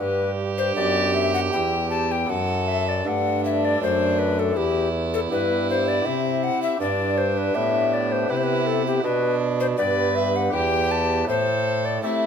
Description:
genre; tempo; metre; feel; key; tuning
classical, baroque-style sonata movement with continuo; 80 BPM; 3/4; straight; G major; A4 = 440 Hz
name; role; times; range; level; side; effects
mellow hollow tenor recorder; melody; 0.0-12.3 s; G4 to A5; -24 LUFS; left 7 dB; none
warm violin; second line; 0.0-12.3 s; D4 to B4; -27 LUFS; right 8 dB; none
pipe organ, flutes; accompaniment; 0.0-12.3 s; E2 to B4; -27 LUFS; equal; none
warm bassoon; bass; 0.0-12.3 s; E2 to A3; -26 LUFS; right 2 dB; none
room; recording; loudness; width
moderate recital hall reverb, RT60 1.3 s; close, detailed microphones; -20 LUFS; side -7 dB against mid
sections
0.0-12.3 A section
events
none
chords
0.0 G; 1.5 Em; 2.3 D/F#; 4.6 Em; 6.0 C; 6.8 G; 9.0 G/B; 10.5 Em; 11.3 Am7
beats
0.76 1.52 | 2.29 3.05 3.80 | 4.55 5.30 6.05 | 6.79 7.54 8.29 | 9.04 9.78 10.53 | 11.28 12.03

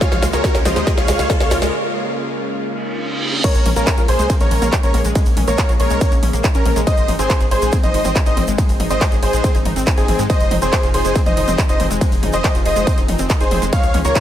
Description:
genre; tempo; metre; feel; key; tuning
uplifting trance; 140 BPM; 4/4; straight; Bb minor; A4 = 439 Hz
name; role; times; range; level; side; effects
big supersaw lead; melody; 0.0-14.2 s; C4 to F5; -22 LUFS; right 1 dB; vintage 12-bit sampler grit, sidechain pumping, tape echo
lush unison pad; sustained chords; 0.0-14.2 s; Db3 to Ab4; -27 LUFS; left 1 dB; chorus, sidechain pumping
wide unison pluck; arpeggios; 0.0-14.2 s; Ab3 to Ab5; -26 LUFS; left 2 dB; sidechain pumping, tape echo
electronic kick drum; drums; 0.0-14.2 s; none; -17 LUFS; equal; distortion, overdrive
techno drum kit; drums; 0.0-14.2 s; crash cymbal, handclaps, hi-hat, ride cymbal, snare drum, toms; -23 LUFS; equal; none
egg shaker; percussion; 0.0-14.2 s; none; -32 LUFS; right 4 dB; none
riser and reverse cymbal; sound effects; 0.0-3.4 s; none; -25 LUFS; right 1 dB; none
tight sequencer bass; bass; 0.1-14.1 s; F1 to Ab2; -21 LUFS; equal; sidechain pumping
warm grand piano; second line; 3.4-14.2 s; Ab4 to F5; -25 LUFS; left 1 dB; sidechain pumping, tape echo
room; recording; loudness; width
digital ambience; none; -14 LUFS; side -11 dB against mid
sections
0.0-3.4 A section; 3.4-14.2 B section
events
build-up 0.0-3.4; drum fill 0.0-1.7; riser 0.0-1.7; break 1.7-3.4; reverse cymbal 2.8-3.4; drop 3.4-14.2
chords
0.0 Db6; 3.4 Bbm7; 6.9 Ab; 10.3 Fm7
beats
| 0.01 0.44 0.87 1.30 | 1.73 2.16 2.58 3.01 | 3.44 3.87 4.30 4.73 | 5.16 5.58 6.01 6.44 | 6.87 7.30 7.73 8.16 | 8.59 9.01 9.44 9.87 | 10.30 10.73 11.16 11.59 | 12.01 12.44 12.87 13.30 | 13.73 14.16

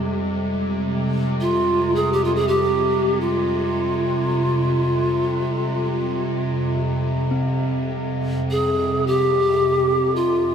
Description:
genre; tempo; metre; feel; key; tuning
world meditative, free-time meditation music; free time; none; none; F hirajoshi; A4 = 440 Hz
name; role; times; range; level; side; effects
evolving wavetable pad; drone; 0.0-10.5 s; F2 to C3; -23 LUFS; equal; chorus, built-in reverb
bronze singing bowl; texture; 0.0-10.5 s; G3 to C4; -29 LUFS; right 1 dB; stereo widening
polished pan flute; melody; 1.4-10.5 s; F4 to Ab4; -20 LUFS; equal; tape echo
room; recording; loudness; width
wet plate reverb, RT60 2.8 s; dreamy mix soaked in reverb; -18 LUFS; side -7 dB against mid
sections
0.0-10.5 A section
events
none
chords
none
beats
free time

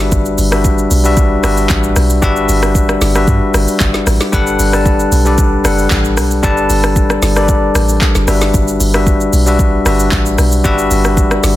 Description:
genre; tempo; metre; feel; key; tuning
amapiano; 114 BPM; 4/4; straight; unclear; A4 = 440 Hz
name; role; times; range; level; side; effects
barky tine electric piano; accompaniment; 0.0-11.6 s; G3 to A5; -14 LUFS; left 2 dB; none
deep log drum bass; bass; 0.0-11.6 s; F#1 to G2; -15 LUFS; equal; none
deep house drum kit; drums; 0.1-11.6 s; handclaps, hi-hat, kick drum, rim click, shaker, snare drum; -15 LUFS; equal; none
room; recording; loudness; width
light reverb; dense, heavily limited modern master; -10 LUFS; side -14 dB against mid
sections
0.0-11.6 A section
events
none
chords
0.0 Em9/G; 4.3 Gmaj7; 8.3 Em9/G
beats
| 0.12 0.65 1.17 1.70 | 2.23 2.75 3.28 3.80 | 4.33 4.86 5.38 5.91 | 6.44 6.96 7.49 8.02 | 8.54 9.07 9.59 10.12 | 10.65 11.17

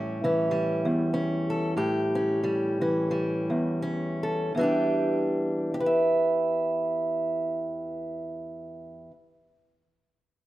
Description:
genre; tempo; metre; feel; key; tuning
folk, solo fingerstyle acoustic guitar; 79-99 BPM; 4/4; swing 56% on 8ths; E dorian; A4 = 441 Hz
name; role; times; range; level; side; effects
fingerpicked acoustic archtop guitar; solo; 0.0-9.2 s; E2 to E5; -25 LUFS; equal; none
room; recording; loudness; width
moderate recital hall reverb, RT60 1.6 s; none; -24 LUFS; side -15 dB against mid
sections
0.0-4.5 A section; 4.5-7.6 B section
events
slowing down 0.0-4.5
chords
0.0 A7; 4.5 Em7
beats
0.50 1.12 | 1.76 2.42 3.10 3.81 | 4.55 5.31 6.07 6.83

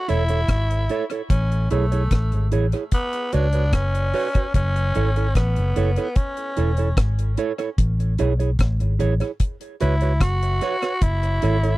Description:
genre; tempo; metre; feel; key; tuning
roots reggae; 74 BPM; 4/4; straight; F# minor; A4 = 440 Hz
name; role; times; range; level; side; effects
growling tenor saxophone; melody; 0.0-11.8 s; A3 to F#4; -26 LUFS; equal; tape echo
mellow electric guitar; accompaniment; 0.1-11.7 s; E4 to C#5; -27 LUFS; right 7 dB; tape echo
vintage muted fingered electric bass; bass; 0.1-11.8 s; E1 to C#2; -20 LUFS; equal; none
deep reggae drum kit; drums; 0.1-11.8 s; hi-hat, kick drum, rim click; -22 LUFS; equal; none
room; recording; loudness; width
little or no reverb; dry, close 1970s-style studio recording; -19 LUFS; side -18 dB against mid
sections
0.0-11.8 A section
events
none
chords
0.0 F#m7 (rootless); 1.3 Amaj7; 2.9 C#7sus4; 4.5 F#m7; 7.8 Amaj7; 9.4 C#7sus4; 11.0 F#m7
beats
0.49 | 1.30 2.11 2.92 3.73 | 4.54 5.35 6.16 6.97 | 7.78 8.59 9.40 10.21 | 11.02

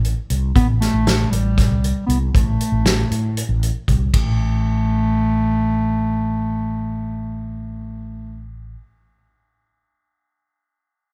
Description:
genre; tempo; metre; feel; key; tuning
progressive instrumental, band music in an uneven meter; 234 BPM (eighths); 7/8; straight; A minor; A4 = 440 Hz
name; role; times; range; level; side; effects
fretless electric bass; bass; 0.0-8.8 s; A1 to A2; -23 LUFS; equal; none
natural country drum kit; drums; 0.0-4.3 s; hi-hat, kick drum, ride cymbal, snare drum; -22 LUFS; equal; none
mellow bass clarinet; melody; 0.6-8.5 s; G3 to B3; -24 LUFS; equal; none
room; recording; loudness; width
light reverb; band playing live in one room; -19 LUFS; mono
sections
0.0-4.1 A section; 4.1-7.7 B section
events
none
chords
0.0 Am; 4.1 N.C.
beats
0.04 0.30 | 0.56 0.81 1.07 1.32 1.58 1.83 2.09 | 2.35 2.60 2.86 3.11 3.37 3.62 3.88 | 4.14 4.39 4.65 4.91 5.16 5.42 5.67 | 5.93 6.19 6.44 6.70 6.95 7.21 7.47

